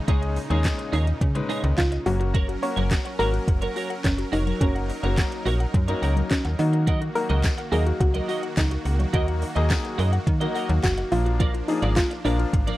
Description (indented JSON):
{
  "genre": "dance-pop",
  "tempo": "106 BPM",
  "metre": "4/4",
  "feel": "straight",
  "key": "Eb minor",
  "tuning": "A4 = 441 Hz",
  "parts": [
    { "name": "supersaw pad", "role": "sustained chords", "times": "0.0-12.8 s", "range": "Bb2 to Bb4", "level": "-35 LUFS", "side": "right 1 dB", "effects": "sidechain pumping" },
    { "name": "mallet-like synth pluck", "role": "arpeggios", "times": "0.0-12.8 s", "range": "Eb3 to Gb5", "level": "-35 LUFS", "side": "left 5 dB", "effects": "chorus, sidechain pumping, tape echo" },
    { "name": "bright concert grand piano", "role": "accompaniment", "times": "0.1-12.8 s", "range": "F3 to F5", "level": "-31 LUFS", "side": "left 5 dB", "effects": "sidechain pumping" },
    { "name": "twelve-string electric guitar", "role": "riff", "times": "0.1-12.8 s", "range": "Eb4 to Eb5", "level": "-31 LUFS", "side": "right 6 dB", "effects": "ensemble chorus" },
    { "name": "slap-like FM bass", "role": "bass", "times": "0.1-12.7 s", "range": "F1 to Eb3", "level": "-24 LUFS", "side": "equal", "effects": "sidechain pumping" },
    { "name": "smooth R&B drum kit", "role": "drums", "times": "0.1-12.8 s", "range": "handclaps, hi-hat, kick drum, snare drum", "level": "-24 LUFS", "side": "equal", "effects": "none" },
    { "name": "soft round pluck", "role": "melody", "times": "1.8-12.8 s", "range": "Db4 to Db5", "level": "-28 LUFS", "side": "equal", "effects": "chorus, tape echo" },
    { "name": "tambourine", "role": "percussion", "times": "7.4-12.1 s", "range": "none", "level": "-38 LUFS", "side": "left 13 dB", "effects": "none" }
  ],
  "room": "little or no reverb",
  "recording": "dry, close 1970s-style studio recording",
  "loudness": "-21 LUFS",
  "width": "side -16 dB against mid",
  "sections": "0.0-12.8 A section",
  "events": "none",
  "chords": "0.0 Dbsus2; 2.1 Gb; 6.6 Ebm; 11.1 Bb"
}